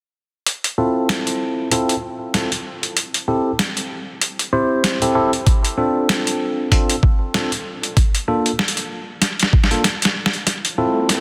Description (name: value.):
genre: glitch hop.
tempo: 96 BPM.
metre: 4/4.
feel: swing 57% on 16ths.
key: unclear.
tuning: A4 = 442 Hz.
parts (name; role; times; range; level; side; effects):
boom bap sampler-style drum kit; drums; 0.5-11.2 s; hi-hat, snare drum; -22 LUFS; equal; overdrive.
bell-like tine electric piano; stabs; 0.8-11.2 s; Bb3 to C5; -23 LUFS; equal; sidechain pumping, low-pass filter, delay.
electronic kick drum; drums; 5.5-11.2 s; none; -17 LUFS; equal; overdrive, high-pass filter on kick.
riser; sound effects; 10.6-11.2 s; none; -31 LUFS; equal; none.
room: moderate lush hall reverb, RT60 2.5 s.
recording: dense, heavily limited modern master.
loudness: -19 LUFS.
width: mono.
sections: 0.5-10.5 A section.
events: drum fill 9.2-10.5, 10.5-11.2; riser 10.6-11.2.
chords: 0.5 Fmaj7/C; 3.0 Am7; 5.5 F6/C; 8.0 Bbmaj7; 10.5 Fmaj7/C.